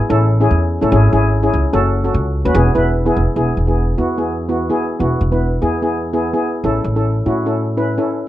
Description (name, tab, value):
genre	calypso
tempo	147 BPM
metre	4/4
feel	straight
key	E major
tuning	A4 = 441 Hz
part	steel pan	accompaniment	0.1-8.2 s	B3 to B4	-17 LUFS	left 1 dB	none
part	upright bass	bass	0.1-8.0 s	E1 to A2	-17 LUFS	equal	none
room	moderate small room reverb, RT60 0.5 s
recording	cassette tape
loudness	-14 LUFS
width	side -14 dB against mid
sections	0.0-3.4 A section; 3.4-8.3 B section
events	none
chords	0.1 A; 0.9 C#m/G#; 1.7 F#m; 2.6 E; 6.6 A